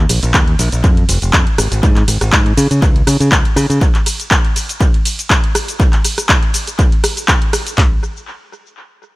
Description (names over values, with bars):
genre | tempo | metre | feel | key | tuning
filtered disco house | 121 BPM | 4/4 | swing 54% on 16ths | unclear | A4 = 443 Hz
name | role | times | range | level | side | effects
modern bright fingered electric bass | bass | 0.0-3.8 s | F1 to Db3 | -14 LUFS | equal | tube saturation, sidechain pumping
punchy analog drum machine | drums | 0.1-7.8 s | cabasa, handclaps, hi-hat, ride cymbal, rim click | -16 LUFS | equal | small room ambience, sidechain pumping on hats, sidechain pumping on perc, sidechain pumping on cymbals, tape echo
punchy analog drum machine | drums | 0.3-7.9 s | handclaps, kick drum, toms | -13 LUFS | equal | small room ambience
room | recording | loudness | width
little or no reverb | echo-heavy mix | -11 LUFS | side -20 dB against mid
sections
0.0-7.8 A section; 7.8-9.2 B section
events
drop 0.0-7.8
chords
none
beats
0.34 0.84 1.33 | 1.83 2.33 2.82 3.32 | 3.81 4.31 4.80 5.30 | 5.80 6.29 6.79 7.28 | 7.78